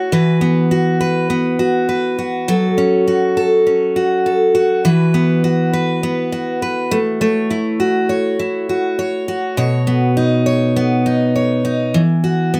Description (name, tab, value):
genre	pop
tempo	101 BPM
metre	4/4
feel	straight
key	unclear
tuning	A4 = 441 Hz
part	picked steel-string acoustic guitar	solo	0.0-12.6 s	B2 to C#5	-16 LUFS	equal	none
room	little or no reverb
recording	close, detailed microphones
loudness	-16 LUFS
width	mono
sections	0.0-11.9 A section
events	none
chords	0.1 Esus2; 2.5 F#m; 4.8 Esus2; 6.9 A6; 9.6 Badd9; 11.9 Esus2